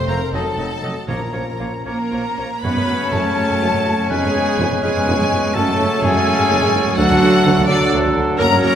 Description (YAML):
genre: classical, dramatic, fast romantic movement for symphony orchestra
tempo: 82 BPM (dotted quarters)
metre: 6/8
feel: rubato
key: F# minor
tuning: A4 = 441 Hz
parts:
  - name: rich chamber violin section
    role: melody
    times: 0.0-8.8 s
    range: D5 to B5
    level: -24 LUFS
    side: left 4 dB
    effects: none
  - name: dark symphonic violin section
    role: second line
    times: 0.0-8.8 s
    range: A4 to B5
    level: -27 LUFS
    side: left 2 dB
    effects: none
  - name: mellow hollow silver concert flute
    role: second line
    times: 0.0-8.8 s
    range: D5 to B5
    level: -26 LUFS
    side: left 2 dB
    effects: none
  - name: clear French horn section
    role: sustained chords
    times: 0.0-8.8 s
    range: F3 to F#4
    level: -25 LUFS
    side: left 2 dB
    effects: none
  - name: timpani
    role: percussion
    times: 0.0-1.8 s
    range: F2 to Bb2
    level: -29 LUFS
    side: equal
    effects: none
  - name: clear clarinet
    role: second line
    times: 0.1-8.8 s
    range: A3 to D4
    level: -27 LUFS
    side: left 1 dB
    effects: none
  - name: clear oboe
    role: second line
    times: 0.1-8.8 s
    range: A4 to Eb5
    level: -26 LUFS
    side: equal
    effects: none
  - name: clear symphonic viola section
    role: accompaniment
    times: 0.1-8.8 s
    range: C4 to B4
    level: -25 LUFS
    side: right 2 dB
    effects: none
  - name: mellow bassoon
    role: accompaniment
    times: 0.1-8.8 s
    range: F3 to G#3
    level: -29 LUFS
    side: right 2 dB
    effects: none
  - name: clear symphonic double bass section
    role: bass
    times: 0.1-8.7 s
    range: F1 to F#2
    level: -24 LUFS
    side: right 2 dB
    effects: none
  - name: rich symphonic cello section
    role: bass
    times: 0.1-8.8 s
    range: F2 to B3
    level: -24 LUFS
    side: right 3 dB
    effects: none
  - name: bright trombone section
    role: sustained chords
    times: 2.6-8.8 s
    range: C#3 to G#3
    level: -28 LUFS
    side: right 3 dB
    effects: none
  - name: dark trumpet section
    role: stabs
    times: 2.6-8.8 s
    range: A4 to C#5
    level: -24 LUFS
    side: left 2 dB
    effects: none
  - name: mellow tuba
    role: bass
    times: 2.6-8.7 s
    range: E#1 to D2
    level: -26 LUFS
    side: right 3 dB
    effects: none
room: wet concert hall reverb, RT60 2.0 s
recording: none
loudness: -15 LUFS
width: side -9 dB against mid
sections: 0.0-2.6 A section; 2.6-8.8 B section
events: none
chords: 0.3 F7b9; 1.1 Bbm; 2.6 F#m; 4.1 C#7/E#; 5.5 F#m; 7.0 D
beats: 0.35 | 1.09 1.87 | 2.63 3.37 | 4.10 4.83 | 5.55 6.26 | 6.97 7.69 | 8.39